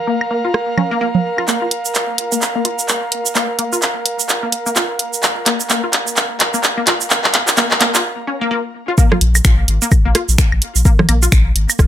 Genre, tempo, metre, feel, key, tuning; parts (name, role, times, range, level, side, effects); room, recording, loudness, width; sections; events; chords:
minimal techno; 128 BPM; 4/4; swing 59% on 16ths; A4 = 444 Hz
airy breathy pad; texture; 0.0-8.0 s; Bb4 to Bb5; -22 LUFS; right 1 dB; chorus, sidechain pumping
resonant blip pluck; riff; 0.1-11.3 s; Bb3 to F4; -22 LUFS; left 2 dB; lush chorus, sidechain pumping, tape echo
booming analog drum machine; percussion; 0.2-1.5, 9.1-11.9 s; congas, rim click, toms, woodblock; -17 LUFS; right 3 dB
techno drum kit; drums; 1.5-11.9 s; cabasa, finger snaps, handclaps, hi-hat; -16 LUFS; right 1 dB
electronic kick drum; drums; 9.0-11.9 s; -12 LUFS; left 1 dB
round analog bass; bass; 9.2-11.9 s; F1 to Bb1; -14 LUFS; left 1 dB; sidechain pumping
moderate studio reverb, RT60 0.6 s; low-pass filter; -13 LUFS; side -11 dB against mid
0.0-1.5 A section; 1.5-9.0 B section; 9.0-11.9 C section
filter sweep on synth pluck 0.0-1.5, 1.5-9.0; build-up 1.5-9.0; drum fill 1.5-8.0; break 8.0-9.0; drop 9.0-11.9
0.0 Bb5; 9.0 N.C.